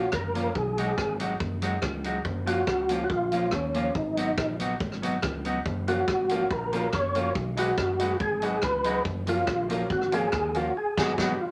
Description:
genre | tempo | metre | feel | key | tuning
ska | 141 BPM | 4/4 | straight | F# major | A4 = 442 Hz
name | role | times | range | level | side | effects
percussive tonewheel organ | melody | 0.0-11.5 s | C#4 to C#5 | -29 LUFS | equal | chorus vibrato, fast rotary speaker
mellow electric guitar | accompaniment | 0.0-11.3 s | E#3 to F#4 | -33 LUFS | equal | none
fingered electric bass | bass | 0.0-11.3 s | F#1 to D#2 | -36 LUFS | equal | none
swinging big-band drum kit | drums | 0.1-11.3 s | crash cymbal, hi-hat, kick drum, rim click, snare drum | -35 LUFS | equal | none
warm upright piano | stabs | 5.9-11.3 s | D#4 to B4 | -38 LUFS | equal | none
room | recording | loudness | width
moderate club reverb, RT60 0.5 s | none | -27 LUFS | mono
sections
0.0-11.5 A section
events
band accent 10.8-11.5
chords
0.0 F#maj7; 0.6 B6; 2.3 F#maj7; 4.0 G#m7; 5.7 F#maj7; 7.4 B6; 9.1 F#maj7; 10.8 G#m7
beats
0.13 | 0.55 0.98 1.40 1.83 | 2.25 2.68 3.10 3.53 | 3.95 4.38 4.80 5.23 | 5.65 6.08 6.50 6.93 | 7.36 7.78 8.21 8.63 | 9.06 9.48 9.91 10.33 | 10.76 11.18

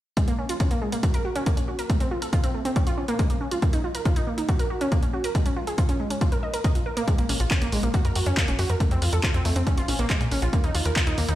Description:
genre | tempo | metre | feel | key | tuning
uplifting trance | 139 BPM | 4/4 | straight | Bb minor | A4 = 440 Hz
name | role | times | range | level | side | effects
wide unison pluck | arpeggios | 0.2-11.3 s | Ab3 to Eb5 | -27 LUFS | right 1 dB | sidechain pumping, tape echo
electronic kick drum | drums | 0.2-11.0 s | none | -24 LUFS | equal | none
punchy analog drum machine | drums | 0.2-11.4 s | handclaps, hi-hat | -31 LUFS | equal | none
tight sequencer bass | bass | 7.2-11.4 s | Gb1 to Bb2 | -25 LUFS | equal | sidechain pumping
room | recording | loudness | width
light reverb | played on a big sound system in a bare room, stone room reverb | -22 LUFS | side -14 dB against mid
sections
0.2-11.4 A section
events
filter sweep on synth pluck 0.2-11.4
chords
0.2 Bbm7; 1.0 Gb; 1.9 F; 2.8 Bbm; 3.6 Ebsus2; 4.5 Gb; 5.3 Db; 6.2 Eb5; 7.1 Bbm7; 7.9 Gb; 8.8 F; 9.7 Bbm; 10.5 Ebsus2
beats
| 0.17 0.60 1.03 1.47 | 1.90 2.33 2.76 3.19 | 3.62 4.05 4.49 4.92 | 5.35 5.78 6.21 6.64 | 7.08 7.51 7.94 8.37 | 8.80 9.23 9.67 10.10 | 10.53 10.96

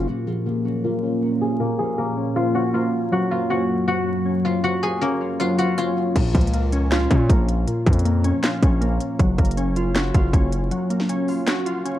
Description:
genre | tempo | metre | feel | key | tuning
hip hop, trap | 158 BPM | 4/4 | half-time | Bb minor | A4 = 437 Hz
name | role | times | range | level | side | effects
guzheng | melody | 0.0-8.3 s | Bb3 to Ab5 | -24 LUFS | left 2 dB | low-pass filter
glassy digital keys | accompaniment | 0.0-12.0 s | Bb2 to Gb4 | -23 LUFS | equal | chorus, low-pass filter
glassy FM pad | sustained chords | 0.0-6.1 s | Gb2 to Db4 | -27 LUFS | right 1 dB | ensemble chorus, built-in reverb, low-pass filter
distorted 808-style bass | bass | 0.0-0.1, 6.2-10.7 s | Gb1 to Bb2 | -21 LUFS | equal | distortion
trap drum kit | drums | 6.2-11.9 s | crash cymbal, handclaps, hi-hat, kick drum, snare drum | -20 LUFS | equal | vintage 12-bit sampler grit
room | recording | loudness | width
light reverb | dark, warm production, vinyl crackle | -18 LUFS | side -13 dB against mid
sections
0.1-6.2 A section; 6.2-12.0 B section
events
filter sweep 0.1-6.2; break 10.7-12.0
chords
0.1 Bbm; 3.1 Gbmaj7; 6.2 Bbm; 9.2 Gbmaj7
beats
| 0.08 0.46 0.84 1.22 | 1.60 1.98 2.36 2.74 | 3.12 3.50 3.88 4.26 | 4.64 5.02 5.40 5.78 | 6.16 6.54 6.92 7.30 | 7.68 8.05 8.44 8.81 | 9.20 9.57 9.95 10.33 | 10.71 11.09 11.47 11.85

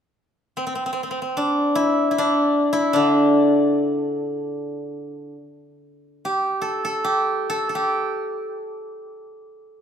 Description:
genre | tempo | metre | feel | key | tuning
chinese traditional, Chinese solo plucked strings | free time | none | none | D shang mode | A4 = 437 Hz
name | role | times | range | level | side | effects
steel-string zither | solo | 0.6-9.8 s | D3 to A4 | -20 LUFS | equal | none
room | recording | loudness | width
moderate recital hall reverb, RT60 1.4 s | minimal, uncompressed stereo recording | -19 LUFS | side -8 dB against mid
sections
0.0-9.8 A section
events
none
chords
none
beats
free time

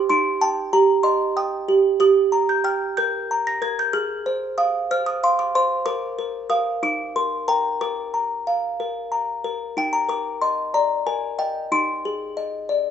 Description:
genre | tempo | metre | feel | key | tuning
classical, lullaby for music box | 62 BPM (dotted quarters) | 6/8 | straight | Eb major | A4 = 440 Hz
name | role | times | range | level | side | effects
music box | solo | 0.0-12.9 s | Eb4 to Bb6 | -19 LUFS | right 1 dB | none
room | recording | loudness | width
moderate large studio reverb, RT60 1.2 s | band playing live in one room, nothing above 7.9 kHz, faint mains hum | -19 LUFS | side -8 dB against mid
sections
0.0-9.8 A section; 9.8-12.9 B section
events
none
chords
0.1 Eb6; 2.0 Gm7; 3.9 Fm/Ab; 5.9 Bb; 6.8 Eb; 7.8 Bb; 9.8 Eb5; 11.7 Ab/Eb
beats
| 0.09 1.05 | 2.01 2.97 | 3.93 4.90 | 5.87 6.84 | 7.81 8.79 | 9.77 10.74 | 11.71 12.68

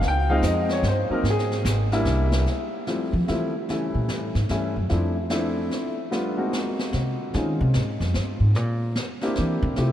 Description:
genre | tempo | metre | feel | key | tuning
jazz piano trio | 148 BPM | 3/4 | swing 65% on 8ths | unclear | A4 = 440 Hz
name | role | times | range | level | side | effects
warm upright piano | melody | 0.0-9.9 s | E3 to G5 | -25 LUFS | left 1 dB | none
upright bass | bass | 0.0-9.9 s | Ab1 to F3 | -23 LUFS | equal | none
jazz brush drum kit | drums | 0.0-9.9 s | brushed snare drum, hi-hat, kick drum, snare drum | -32 LUFS | equal | none
room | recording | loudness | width
moderate cathedral reverb, RT60 6.0 s | in a vast, echoing space | -22 LUFS | side -11 dB against mid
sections
0.0-2.5 A section; 2.5-9.9 A section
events
upright piano solo 0.0-2.5; upright bass solo 2.5-9.9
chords
0.0 Dbmaj7; 1.2 N.C.; 2.1 C7; 2.5 Fmaj7; 3.7 A7; 4.9 Dm7; 6.1 Ab7; 7.3 Dbmaj7; 8.6 C7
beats
| 0.02 0.43 0.83 | 1.24 1.65 2.05 | 2.46 2.87 3.27 | 3.68 4.08 4.49 | 4.90 5.30 5.71 | 6.12 6.52 6.93 | 7.33 7.74 8.15 | 8.55 8.96 9.37 | 9.77

